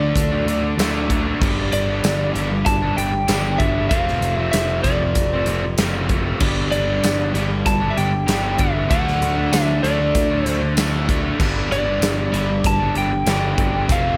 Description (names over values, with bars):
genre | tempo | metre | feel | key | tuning
classic rock | 96 BPM | 4/4 | straight | G major | A4 = 440 Hz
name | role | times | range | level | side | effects
lightly driven lead guitar | melody | 0.0-14.2 s | D5 to A5 | -25 LUFS | equal | none
biting overdriven guitar | riff | 0.0-14.2 s | F2 to D4 | -27 LUFS | equal | none
crunchy overdriven guitar | riff | 0.0-14.2 s | F2 to D4 | -28 LUFS | equal | none
picked electric bass | bass | 0.0-14.2 s | F1 to D2 | -26 LUFS | equal | none
big rock drum kit | drums | 0.2-14.0 s | crash cymbal, hi-hat, kick drum, snare drum, tambourine | -25 LUFS | equal | none
room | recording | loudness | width
light reverb, small room ambience | none | -19 LUFS | mono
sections
0.0-14.2 A section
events
none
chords
0.0 D; 1.4 G; 3.9 F; 6.4 G; 8.9 D; 11.4 G